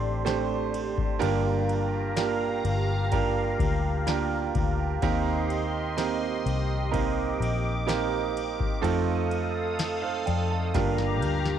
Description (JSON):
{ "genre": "pop ballad", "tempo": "63 BPM", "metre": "4/4", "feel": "straight", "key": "G minor", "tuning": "A4 = 441 Hz", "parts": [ { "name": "clear grand piano", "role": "accompaniment", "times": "0.0-11.6 s", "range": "G2 to A5", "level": "-28 LUFS", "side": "right 7 dB", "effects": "cassette tape" }, { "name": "sweeping resonant pad", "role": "sustained chords", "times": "0.0-11.6 s", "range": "G4 to Eb6", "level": "-33 LUFS", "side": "left 1 dB", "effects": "chorus, cassette tape" }, { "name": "vintage muted fingered electric bass", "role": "bass", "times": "0.0-11.6 s", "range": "G1 to F2", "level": "-30 LUFS", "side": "left 3 dB", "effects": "none" }, { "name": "booming analog drum machine", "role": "drums", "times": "0.3-11.6 s", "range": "kick drum, ride cymbal, snare drum", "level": "-32 LUFS", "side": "left 3 dB", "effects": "cassette tape" } ], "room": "little or no reverb", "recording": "home recording on cassette", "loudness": "-24 LUFS", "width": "side -9 dB against mid", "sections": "0.0-11.6 A section", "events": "drum fill 10.7-11.6", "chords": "0.0 D7sus4; 1.2 Gm7; 5.0 Eb6; 8.8 F7; 10.7 Gm7", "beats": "0.26 | 1.22 2.17 3.12 4.07 | 5.03 5.98 6.93 7.88 | 8.83 9.79 10.74" }